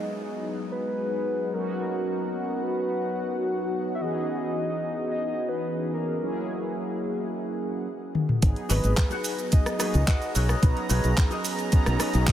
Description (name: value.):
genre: nu-disco, nu disco.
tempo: 109 BPM.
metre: 4/4.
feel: straight.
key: G# minor.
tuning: A4 = 440 Hz.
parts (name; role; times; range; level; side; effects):
soft octave-layered synth lead; melody; 0.0-11.7 s; A#4 to E5; -32 LUFS; left 1 dB; chorus, analog delay.
mellow synth brass; accompaniment; 0.0-12.3 s; E3 to A#5; -30 LUFS; right 1 dB; chorus.
lush unison pad; sustained chords; 0.0-12.3 s; F#4 to A#5; -35 LUFS; left 1 dB; chorus, sidechain pumping.
house drum kit; drums; 8.1-12.3 s; handclaps, hi-hat, rim click, shaker, toms; -30 LUFS; left 1 dB; none.
modern bright fingered electric bass; bass; 8.4-12.3 s; G#1 to C#2; -23 LUFS; equal; sidechain pumping.
electronic kick drum; drums; 8.4-12.3 s; none; -20 LUFS; equal; overdrive.
electric guitar with an envelope filter; riff; 8.7-12.3 s; F#4 to F#5; -36 LUFS; left 3 dB; analog chorus.
room: moderate huge ambient reverb, RT60 6.9 s.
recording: dreamy mix soaked in reverb.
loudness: -24 LUFS.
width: side -11 dB against mid.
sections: 0.0-8.4 A section; 8.4-12.3 B section.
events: drum fill 8.1; drop 8.4-12.3.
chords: 0.0 G#m7; 1.5 Bmaj7; 4.0 C#m9; 6.2 F#7; 8.4 G#m7; 10.3 Bmaj7.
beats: 0.17 0.72 1.27 | 1.82 2.37 2.92 3.47 | 4.02 4.57 5.12 5.67 | 6.22 6.77 7.32 7.87 | 8.42 8.97 9.52 10.07 | 10.62 11.18 11.73 12.28.